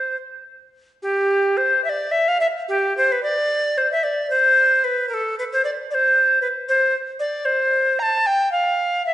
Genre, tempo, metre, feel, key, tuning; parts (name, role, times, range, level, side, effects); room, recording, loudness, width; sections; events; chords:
classical, baroque-style fantasia for unaccompanied recorder; 75 BPM (dotted quarters); 6/8; rubato; C major; A4 = 442 Hz
tenor recorder; solo; 0.0-9.1 s; G4 to Bb5; -17 LUFS; equal
wet recital hall reverb, RT60 1.7 s; recorded in a church or concert hall, nothing above 10.4 kHz; -17 LUFS; side -13 dB against mid
0.0-1.0 A section; 1.0-9.1 A section